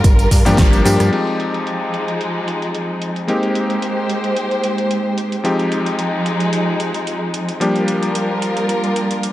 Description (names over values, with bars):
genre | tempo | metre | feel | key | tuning
nu-disco, nu disco | 111 BPM | 4/4 | swing 54% on 16ths | F dorian | A4 = 442 Hz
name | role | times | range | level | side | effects
dark symphonic string section | sustained chords | 0.0-9.3 s | F3 to C5 | -20 LUFS | equal | sidechain pumping
fat analog bass | bass | 0.0-1.1 s | G1 to G2 | -17 LUFS | equal | none
electronic kick drum | drums | 0.0-0.7 s | none | -12 LUFS | equal | studio reverb
pop drum kit | drums | 0.0-9.3 s | crash cymbal, hi-hat, rim click, snare drum, tambourine | -26 LUFS | right 1 dB | low-pass filter on hats, studio reverb, low-pass filter on perc, low-pass filter on snare, low-pass filter on cymbals
clear electric grand piano | accompaniment | 0.5-9.3 s | F3 to G4 | -19 LUFS | left 1 dB | sidechain pumping, dub echo
room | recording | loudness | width
light reverb, digital ambience | none | -16 LUFS | side -14 dB against mid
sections
0.0-1.1 A section; 1.1-9.3 B section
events
band accent 0.6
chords
0.0 Gm7; 1.1 Fm7; 3.3 Abmaj7; 5.4 Fm7; 7.6 Gm7